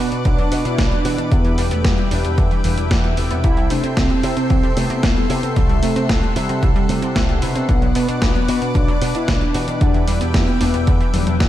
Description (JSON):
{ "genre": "italo disco", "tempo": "113 BPM", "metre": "4/4", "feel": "straight", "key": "E minor", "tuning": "A4 = 440 Hz", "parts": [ { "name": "mellow synth brass", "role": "melody", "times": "0.0-11.4 s", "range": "G3 to E4", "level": "-23 LUFS", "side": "equal", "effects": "chorus, cassette tape, ping-pong delay" }, { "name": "lush unison pad", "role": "sustained chords", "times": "0.0-11.5 s", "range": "A4 to D6", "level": "-28 LUFS", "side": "left 1 dB", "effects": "chorus" }, { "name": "analog pluck", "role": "arpeggios", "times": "0.0-11.5 s", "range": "D3 to F#4", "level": "-28 LUFS", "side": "right 5 dB", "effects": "chorus, ping-pong delay" }, { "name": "analog synth brass", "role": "stabs", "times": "0.0-11.5 s", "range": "B2 to B4", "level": "-27 LUFS", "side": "left 4 dB", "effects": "chorus, cassette tape" }, { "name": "picked electric bass with an envelope filter", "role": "bass", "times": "0.0-11.5 s", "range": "E1 to C3", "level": "-22 LUFS", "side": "equal", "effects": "tube saturation" }, { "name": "gated 80s digital drum machine", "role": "drums", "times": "0.1-11.5 s", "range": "hi-hat, snare drum, toms", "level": "-24 LUFS", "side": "left 1 dB", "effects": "gated reverb, gated reverb snare" }, { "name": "electronic kick drum", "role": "drums", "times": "0.3-11.5 s", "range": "none", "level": "-18 LUFS", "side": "equal", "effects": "none" } ], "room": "little or no reverb", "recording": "dark, warm production", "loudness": "-15 LUFS", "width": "side -13 dB against mid", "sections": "0.0-11.5 A section", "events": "drum fill 11.1-11.5", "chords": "0.0 Bm; 1.3 Em7; 3.4 C6; 7.7 Bm; 9.8 Em7", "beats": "0.25 0.79 | 1.32 1.85 2.38 2.91 | 3.44 3.97 4.50 5.03 | 5.56 6.09 6.62 7.16 | 7.69 8.22 8.75 9.28 | 9.81 10.34 10.87 11.40" }